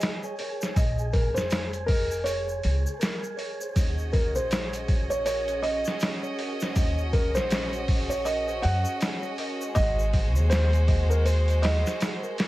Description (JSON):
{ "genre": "trip hop", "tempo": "80 BPM", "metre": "4/4", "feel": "swing 59% on 16ths", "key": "Eb dorian", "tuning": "A4 = 441 Hz", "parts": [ { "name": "felt-muted upright piano", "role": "melody", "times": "0.0-12.3 s", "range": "Bb4 to Gb5", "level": "-29 LUFS", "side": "equal", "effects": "dub echo" }, { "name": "trip hop sampler-style drum kit", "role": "drums", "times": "0.0-12.5 s", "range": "hi-hat, kick drum, snare drum", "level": "-27 LUFS", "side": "equal", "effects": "none" }, { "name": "egg shaker", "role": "percussion", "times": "0.0-12.4 s", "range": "none", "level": "-44 LUFS", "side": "left 1 dB", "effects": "none" }, { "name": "wind-like tuned noise texture", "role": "texture", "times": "0.0-12.5 s", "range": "Ab4", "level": "-40 LUFS", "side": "right 2 dB", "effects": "built-in reverb" }, { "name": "upright bass", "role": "bass", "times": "0.8-11.8 s", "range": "F1 to Gb2", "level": "-26 LUFS", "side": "equal", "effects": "tube saturation" }, { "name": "clear studio violin section", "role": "sustained chords", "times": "3.8-12.5 s", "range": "Ab3 to Eb5", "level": "-34 LUFS", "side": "right 1 dB", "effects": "vintage 12-bit sampler grit" } ], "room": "little or no reverb", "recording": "echo-heavy mix, vinyl crackle", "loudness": "-23 LUFS", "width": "side -17 dB against mid", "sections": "0.0-12.5 A section", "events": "none", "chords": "0.0 Ab5; 0.8 Bbm7; 3.8 Ebm7; 9.8 Ab7" }